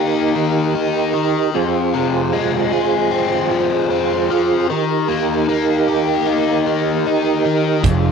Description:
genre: psychedelic rock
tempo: 76 BPM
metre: 4/4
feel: straight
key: unclear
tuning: A4 = 440 Hz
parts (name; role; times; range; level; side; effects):
- mellow tonewheel organ; sustained chords; 0.0-8.1 s; Eb4 to C5; -19 LUFS; right 11 dB; chorus vibrato, slow rotary speaker
- overdriven electric guitar; riff; 0.0-8.1 s; F2 to Ab4; -18 LUFS; left 7 dB; flanger
- fuzz picked electric bass; bass; 7.8-8.1 s; F1; -15 LUFS; right 2 dB; overdrive
- damped 70s drum kit; drums; 7.8-8.0 s; hi-hat, kick drum; -17 LUFS; right 4 dB; none
room: moderate spring reverb, RT60 2.6 s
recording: 1960s-style stereo with parts hard left and right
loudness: -15 LUFS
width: side -6 dB against mid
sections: 0.0-8.1 A section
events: none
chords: 0.0 Eb; 1.5 Fm; 4.7 Eb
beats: 0.73 | 1.53 2.32 3.11 3.90 | 4.69 5.48 6.27 7.06 | 7.85

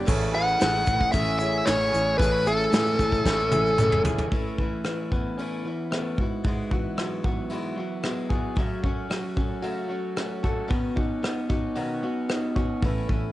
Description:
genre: folk rock and heartland rock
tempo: 113 BPM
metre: 4/4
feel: straight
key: A major, A lydian from 4.3 s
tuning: A4 = 440 Hz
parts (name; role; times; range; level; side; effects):
- picked acoustic archtop guitar; accompaniment; 0.0-13.3 s; F#2 to B4; -33 LUFS; left 3 dB; cassette tape
- tonewheel organ; sustained chords; 0.0-4.3, 12.8-13.3 s; A3 to G#5; -38 LUFS; equal; none
- electric guitar through a small old amp; riff; 0.0-13.3 s; G#2 to C#5; -30 LUFS; equal; cassette tape
- fingered electric bass; bass; 0.0-4.3, 12.8-13.3 s; F#1 to A2; -30 LUFS; equal; none
- warm upright piano; accompaniment; 0.1-4.2 s; G#4 to G#5; -35 LUFS; right 2 dB; cassette tape
- soft brush drum kit; drums; 0.1-13.2 s; crash cymbal, hi-hat, kick drum, rim click, snare drum, toms; -27 LUFS; equal; cassette tape
- tube shaker; percussion; 0.1-4.3 s; none; -45 LUFS; left 7 dB; none
- bluesy overdriven lead guitar; melody; 0.3-4.0 s; A4 to F#5; -24 LUFS; equal; distortion, cassette tape, analog delay
room: light reverb, studio reverb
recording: home recording on cassette, nothing above 10.7 kHz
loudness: -23 LUFS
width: side -16 dB against mid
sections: 0.0-4.3 A section; 4.3-13.3 B section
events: drum fill 3.3-4.3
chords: 0.1 Amaj7; 4.3 Aadd9; 6.2 Eadd9/G#; 8.6 F#m; 10.7 Badd9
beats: | 0.08 0.61 1.14 1.67 | 2.20 2.73 3.26 3.79 | 4.32 4.86 5.39 5.92 | 6.45 6.99 7.52 8.05 | 8.58 9.12 9.65 10.18 | 10.71 11.24 11.77 12.30 | 12.84

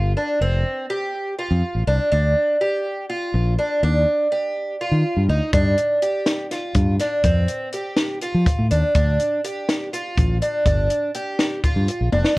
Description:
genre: progressive instrumental, band music in an uneven meter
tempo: 246 BPM (eighths)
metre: 7/8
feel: straight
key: G minor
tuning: A4 = 440 Hz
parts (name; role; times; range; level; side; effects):
- picked twelve-string acoustic guitar; arpeggios; 0.0-12.3 s; C4 to G4; -22 LUFS; right 1 dB; analog delay
- fingered electric bass; bass; 0.0-12.2 s; F1 to F3; -19 LUFS; equal; none
- compact cocktail drum kit; drums; 5.5-12.4 s; hi-hat, kick drum, snare drum, toms; -21 LUFS; equal; none
room: light reverb, studio ambience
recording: worn, warbling old tape, cassette tape, warbly pitch drift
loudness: -18 LUFS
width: side -21 dB against mid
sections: 0.0-12.4 A section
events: drum fill 12.1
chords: 0.4 Fsus2; 2.1 Dm; 3.8 Ebmaj7; 5.5 G5; 7.2 Fsus2; 9.0 Dm; 10.7 G7(no3)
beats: 0.17 | 0.41 0.65 0.90 1.14 1.39 1.63 1.87 | 2.12 2.36 2.61 2.85 3.09 3.34 3.58 | 3.83 4.07 4.31 4.56 4.80 5.05 5.29 | 5.53 5.78 6.02 6.27 6.51 6.75 7.00 | 7.24 7.49 7.73 7.97 8.22 8.46 8.71 | 8.95 9.20 9.44 9.68 9.93 10.17 10.42 | 10.66 10.90 11.15 11.39 11.64 11.88 12.12

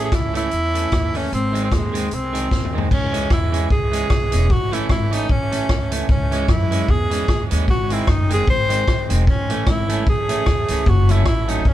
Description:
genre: ska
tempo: 151 BPM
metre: 4/4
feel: swing 57% on 8ths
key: C# harmonic minor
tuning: A4 = 440 Hz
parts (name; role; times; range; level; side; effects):
- clear tenor saxophone; melody; 0.0-11.7 s; G#3 to B#4; -23 LUFS; equal; none
- electric guitar at the edge of break-up; accompaniment; 0.0-11.6 s; D#3 to C#4; -26 LUFS; right 4 dB; dub echo
- upright bass; bass; 0.0-11.7 s; E1 to F#2; -22 LUFS; equal; none
- vintage drum kit; drums; 0.1-11.7 s; crash cymbal, hi-hat, kick drum, rim click, snare drum, toms; -20 LUFS; equal; none
room: light reverb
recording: band playing live in one room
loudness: -16 LUFS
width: side -13 dB against mid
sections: 0.0-2.9 A section; 2.9-11.7 B section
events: drum fill 2.5-2.9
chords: 0.0 A; 1.3 G#; 2.9 C#m; 4.5 A; 6.1 C#m; 7.7 G#; 9.3 A; 10.9 F#m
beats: 0.12 0.52 0.92 | 1.32 1.72 2.11 2.51 | 2.91 3.31 3.71 4.10 | 4.50 4.90 5.30 5.70 | 6.09 6.49 6.89 7.29 | 7.68 8.08 8.48 8.88 | 9.27 9.67 10.07 10.46 | 10.86 11.26 11.66

